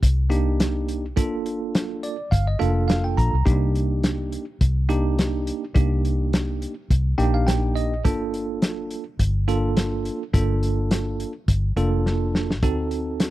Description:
straight-eighth soul blues; 105 BPM; 4/4; swing 55% on 16ths; G minor; A4 = 441 Hz
vintage muted fingered electric bass; bass; 0.0-13.3 s; F1 to D2; -22 LUFS; equal
warm soul drum kit; drums; 0.0-13.3 s; hi-hat, kick drum, snare drum; -22 LUFS; left 1 dB
bell-like tine electric piano; accompaniment; 0.3-13.3 s; Bb3 to Bb5; -25 LUFS; right 2 dB; medium stereo tremolo
studio ambience; dry, close 1970s-style studio recording; -20 LUFS; side -15 dB against mid
0.0-13.3 A section
tine electric piano fill 1.7-3.5, 6.9-8.0; drum fill 12.1-12.6
0.0 Cm7; 1.2 Gm7; 3.5 Cm7; 8.0 Gm7; 12.6 D7b9
0.03 0.60 | 1.17 1.75 2.32 2.89 | 3.46 4.04 4.61 5.18 | 5.76 6.33 6.90 7.48 | 8.05 8.62 9.19 9.77 | 10.34 10.91 11.48 12.06 | 12.63 13.20

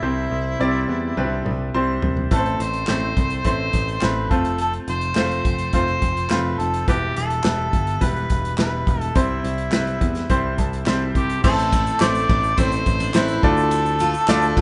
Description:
piano-driven pop; 105 BPM; 4/4; straight; A minor; A4 = 440 Hz
mellow harmonica; melody; 0.0-14.6 s; E4 to D5; -26 LUFS; equal
bright grand piano; accompaniment; 0.0-14.6 s; A2 to A5; -26 LUFS; equal
picked electric bass; bass; 0.0-14.6 s; E1 to E2; -28 LUFS; equal
loose indie drum kit; drums; 1.2-14.6 s; crash cymbal, handclaps, hi-hat, kick drum, ride cymbal, snare drum, toms; -25 LUFS; equal
egg shaker; percussion; 11.4-14.6 s; -45 LUFS; equal
picked steel-string acoustic guitar; riff; 11.7-14.6 s; C4 to F4; -31 LUFS; equal
moderate large studio reverb, RT60 0.8 s; band playing live in one room, nothing above 10.5 kHz; -21 LUFS; mono
0.0-11.4 A section; 11.4-14.6 B section
drum fill 1.2-2.3; grand piano fill 10.3-11.4
0.0 C; 2.3 Am; 4.3 F; 6.9 Em; 9.2 C; 11.4 Am; 13.4 Dm
| 0.03 0.60 1.17 1.74 | 2.31 2.88 3.46 4.03 | 4.60 5.17 5.74 6.31 | 6.88 7.45 8.02 8.59 | 9.16 9.73 10.30 10.87 | 11.44 12.01 12.58 13.15 | 13.71 14.28

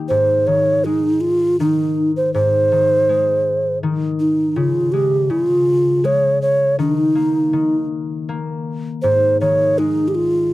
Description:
children's music, lullaby; 80 BPM; 3/4; straight; Ab major; A4 = 440 Hz
concert harp; accompaniment; 0.0-10.5 s; Ab2 to G4; -21 LUFS; left 4 dB
breathy mellow round clay ocarina; melody; 0.1-10.5 s; Eb4 to Db5; -15 LUFS; right 1 dB
light reverb; dry, close 1970s-style studio recording; -15 LUFS; side -17 dB against mid
0.1-10.5 A section
0.1 Ab5; 4.6 Db; 6.8 Eb5; 9.0 Ab5
| 0.09 0.85 1.60 | 2.34 3.08 3.83 | 4.56 5.30 6.04 | 6.78 7.53 8.28 | 9.03 9.78 10.53

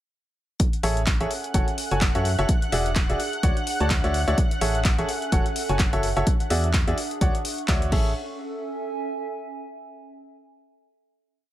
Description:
piano house; 127 BPM; 4/4; swing 57% on 16ths; A major; A4 = 440 Hz
analog string pad; sustained chords; 1.3-7.9 s; F#5 to F#6; -34 LUFS; left 1 dB; ensemble chorus, sidechain pumping
electronic kick drum; drums; 0.6-8.0 s; -22 LUFS; equal
punchy analog drum machine; drums; 0.6-8.0 s; crash cymbal, handclaps, hi-hat; -30 LUFS; left 1 dB
warbly tape-like pad; texture; 0.6-10.0 s; C#4 to C#6; -33 LUFS; right 3 dB; chorus, built-in reverb, sidechain pumping
clear upright piano; riff; 0.8-8.1 s; F#4 to A5; -27 LUFS; equal; sidechain pumping, digital delay
organ-like FM bass; bass; 0.8-8.1 s; E1 to F#2; -26 LUFS; equal; sidechain pumping
digital ambience; -21 LUFS; side -13 dB against mid
0.6-8.2 groove; 8.2-10.0 final chord
0.6 Amaj7; 1.5 F#m7; 2.5 E9; 3.2 Dmaj9; 4.4 Amaj7; 5.3 F#m7; 6.3 E9; 7.0 Dmaj9; 7.9 Amaj7
| 0.60 1.07 1.54 2.02 | 2.49 2.96 3.43 3.90 | 4.38 4.85 5.32 5.79 | 6.27 6.74 7.21 7.68 | 8.16 8.63 9.10 9.57

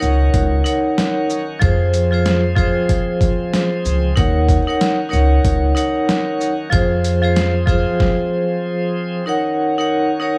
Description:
hip hop, boom-bap hip-hop; 94 BPM; 4/4; swing 60% on 16ths; Eb dorian; A4 = 441 Hz
vibraphone with hard mallets; accompaniment; 0.0-10.4 s; F3 to Gb5; -20 LUFS; equal; cassette tape
bright tonewheel organ; sustained chords; 0.0-10.4 s; Eb3 to Ab4; -32 LUFS; equal; overdrive, slow rotary speaker
upright bass; bass; 0.0-7.8 s; Db2 to F2; -20 LUFS; equal
boom bap sampler-style drum kit; drums; 0.0-8.2 s; hi-hat, kick drum, shaker, snare drum; -21 LUFS; equal; overdrive
digital ambience; small room ambience; -17 LUFS; mono
0.0-9.3 A section; 9.3-10.4 B section
stop 8.0-9.3
0.0 Ebm7; 1.6 Fm; 4.2 Ebm7; 6.7 Fm; 9.3 Ebm7
0.34 0.98 | 1.62 2.26 2.89 3.53 | 4.17 4.81 5.45 6.09 | 6.72 7.36 8.00 8.64 | 9.28 9.92

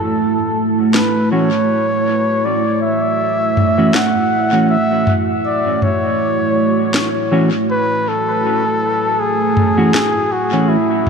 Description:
ambient dub; 80 BPM; 4/4; swing 56% on 16ths; F# minor; A4 = 440 Hz
trumpet with bucket mute; melody; 0.0-11.1 s; E4 to F#5; -17 LUFS; left 1 dB; dub echo
deep dark ambient pad; sustained chords; 0.0-11.1 s; A3 to E5; -18 LUFS; right 3 dB; chorus, built-in reverb
organic electronic drum kit; drums; 0.9-11.1 s; snare drum, toms; -21 LUFS; left 1 dB; dub echo
mellow electric guitar; stabs; 1.3-10.8 s; E3 to F#4; -20 LUFS; right 1 dB; wide subtle chorus, low-pass filter, dub echo
moderate huge ambient reverb, RT60 4.9 s; dark, warm production; -13 LUFS; side -5 dB against mid
0.0-11.1 A section
0.0 F#m7
0.19 0.94 | 1.69 2.44 3.19 3.94 | 4.69 5.44 6.19 6.94 | 7.69 8.44 9.19 9.94 | 10.69

